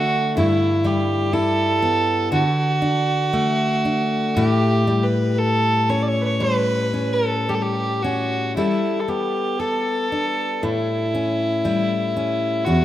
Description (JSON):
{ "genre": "celtic folk, Celtic slow air", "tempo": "59 BPM", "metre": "4/4", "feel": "uneven beats, rubato", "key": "unclear", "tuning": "A4 = 443 Hz", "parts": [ { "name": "rich fiddle", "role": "melody", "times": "0.0-12.8 s", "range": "E4 to D5", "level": "-22 LUFS", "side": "right 2 dB", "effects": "slapback echo" }, { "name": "fingerpicked steel-string acoustic guitar", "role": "accompaniment", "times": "0.0-12.8 s", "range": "E2 to A4", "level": "-20 LUFS", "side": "left 2 dB", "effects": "none" } ], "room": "moderate lush hall reverb, RT60 2.7 s", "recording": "rough home demo mix", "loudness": "-18 LUFS", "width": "side -13 dB against mid", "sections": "0.0-12.8 A section", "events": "none", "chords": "0.4 G6; 4.4 A7; 8.6 Gadd9; 10.6 A7" }